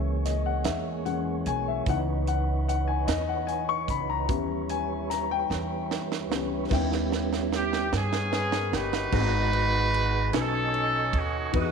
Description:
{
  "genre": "slow gospel",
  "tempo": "50 BPM (dotted quarters)",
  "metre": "6/8",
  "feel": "straight",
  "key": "unclear",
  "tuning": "A4 = 440 Hz",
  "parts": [
    { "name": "dark concert grand piano", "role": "accompaniment", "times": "0.0-11.7 s", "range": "G#2 to C#6", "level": "-30 LUFS", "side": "left 12 dB", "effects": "none" },
    { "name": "tonewheel organ", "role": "sustained chords", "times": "0.0-11.7 s", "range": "E3 to D#6", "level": "-33 LUFS", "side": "right 9 dB", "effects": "slow rotary speaker" },
    { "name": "upright bass", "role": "bass", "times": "0.0-11.7 s", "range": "G1 to G2", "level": "-30 LUFS", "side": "right 1 dB", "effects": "none" },
    { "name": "tight funk drum kit", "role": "drums", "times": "0.3-11.7 s", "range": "crash cymbal, hi-hat, kick drum, ride cymbal, snare drum", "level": "-32 LUFS", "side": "right 6 dB", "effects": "none" },
    { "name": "bright horn section", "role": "melody", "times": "7.5-11.7 s", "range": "B3 to B4", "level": "-27 LUFS", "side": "right 1 dB", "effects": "slapback echo" }
  ],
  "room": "moderate echo chamber reverb, RT60 2.0 s",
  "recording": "1960s-style stereo with parts hard left and right",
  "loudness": "-24 LUFS",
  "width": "side -6 dB against mid",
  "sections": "0.0-6.7 A section; 6.7-9.1 B section; 9.1-11.7 C section",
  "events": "grand piano solo 0.0-6.7; drum fill 5.5-6.7, 6.7-9.1; tonewheel organ solo 6.7-9.1",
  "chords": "0.0 A#m7b5/C#; 1.9 C#m9; 4.3 D#7b9b13; 9.1 G#m9; 10.3 B13",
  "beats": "0.66 | 1.87 3.08 | 4.30 5.51 | 6.71 7.92 | 9.13 10.33 | 11.54"
}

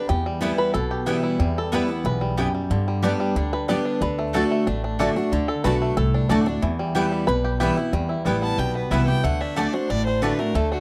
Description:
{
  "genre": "bluegrass",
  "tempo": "184 BPM",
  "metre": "4/4",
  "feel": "straight",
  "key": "E minor",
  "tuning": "A4 = 440 Hz",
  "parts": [
    { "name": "bluegrass banjo", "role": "melody", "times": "0.0-10.8 s", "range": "D3 to D5", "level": "-30 LUFS", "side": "equal", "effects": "tape echo" },
    { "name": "picked steel-string acoustic guitar", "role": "accompaniment", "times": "0.0-10.8 s", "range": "E2 to G4", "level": "-26 LUFS", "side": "equal", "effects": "none" },
    { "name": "upright bass", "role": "bass", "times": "0.1-10.8 s", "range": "A1 to G2", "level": "-28 LUFS", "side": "equal", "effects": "none" },
    { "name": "mandolin", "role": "stabs", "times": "0.4-10.3 s", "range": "A3 to A5", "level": "-31 LUFS", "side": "equal", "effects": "none" },
    { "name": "clear fiddle", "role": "melody", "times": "8.4-10.8 s", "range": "F#4 to A5", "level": "-30 LUFS", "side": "equal", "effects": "none" }
  ],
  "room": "studio reverb",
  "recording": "dry, close 1970s-style studio recording",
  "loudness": "-23 LUFS",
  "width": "mono",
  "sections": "0.0-7.9 A section; 7.9-10.8 B section",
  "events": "five-string banjo solo 0.0-7.9",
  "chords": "0.1 Em; 2.7 G; 4.0 D; 6.6 Em; 9.2 D",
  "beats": "| 0.09 0.42 0.74 1.07 | 1.40 1.73 2.05 2.38 | 2.71 3.03 3.36 3.69 | 4.01 4.34 4.67 4.99 | 5.32 5.64 5.97 6.30 | 6.62 6.95 7.28 7.61 | 7.93 8.26 8.59 8.91 | 9.24 9.57 9.89 10.22 | 10.55"
}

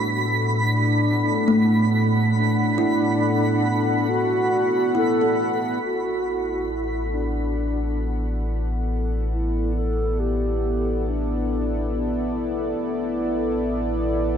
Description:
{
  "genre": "ambient",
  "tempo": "69 BPM",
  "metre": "4/4",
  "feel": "straight",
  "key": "unclear",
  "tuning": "A4 = 441 Hz",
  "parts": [
    { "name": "mellow hollow wooden-headed alto flute", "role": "melody", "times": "0.0-12.4 s", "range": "D4 to A4", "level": "-26 LUFS", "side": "left 1 dB", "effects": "tape echo" },
    { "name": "warm analog pad", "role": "sustained chords", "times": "0.0-14.4 s", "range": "A2 to F#5", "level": "-24 LUFS", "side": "equal", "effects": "chorus" },
    { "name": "kalimba", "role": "arpeggios", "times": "0.0-6.5 s", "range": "A3 to A4", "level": "-25 LUFS", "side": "right 1 dB", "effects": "tape echo" },
    { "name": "twinkling granular texture", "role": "texture", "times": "0.0-5.8 s", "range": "B5", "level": "-28 LUFS", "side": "right 4 dB", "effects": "built-in reverb" },
    { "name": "warm sub bass", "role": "bass", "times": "5.8-14.4 s", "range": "A1", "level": "-26 LUFS", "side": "equal", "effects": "none" }
  ],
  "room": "moderate huge ambient reverb, RT60 9.7 s",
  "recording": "dark, warm production",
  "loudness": "-20 LUFS",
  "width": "side -8 dB against mid",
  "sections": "0.0-5.8 A section; 5.8-14.4 B section",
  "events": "filter sweep on analog synth pad 0.0-5.8; fade-in on analog synth pad 5.8-14.4",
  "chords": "0.0 Dadd9/A",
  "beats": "0.61 1.48 | 2.35 3.22 4.09 4.96 | 5.83 6.70 7.57 8.44 | 9.31 10.18 11.04 11.91 | 12.78 13.65"
}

